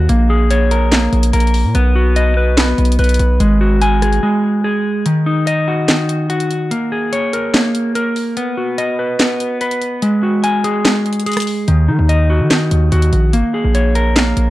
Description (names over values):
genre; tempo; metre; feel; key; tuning
hip hop, trap; 145 BPM; 4/4; half-time; Eb minor; A4 = 440 Hz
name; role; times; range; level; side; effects
clean electric guitar; arpeggios; 0.0-14.5 s; Eb3 to Ab5; -15 LUFS; left 1 dB; low-pass filter, tape echo
hard-hitting 808-style bass; bass; 0.0-4.2, 11.7-14.5 s; Ab1 to Eb3; -13 LUFS; equal; none
house drum kit; drums; 0.1-14.5 s; handclaps, hi-hat, rim click, snare drum; -18 LUFS; equal; none
room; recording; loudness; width
light reverb, digital ambience; dark, warm production; -12 LUFS; side -16 dB against mid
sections
0.0-5.1 A section; 5.1-14.5 B section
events
break 4.2-5.1, 5.1-11.7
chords
0.1 Bbm7; 1.7 B; 3.4 Gbsus2/Ab; 5.1 Ebm; 6.7 Bbm7; 8.4 B; 10.0 Gbsus2/Ab; 11.7 Ebm; 13.3 Bbm7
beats
| 0.09 0.51 0.92 1.33 | 1.75 2.16 2.57 2.99 | 3.40 3.81 4.23 4.64 | 5.06 5.47 5.88 6.30 | 6.71 7.13 7.54 7.95 | 8.37 8.78 9.20 9.61 | 10.02 10.44 10.85 11.26 | 11.68 12.09 12.51 12.92 | 13.33 13.75 14.16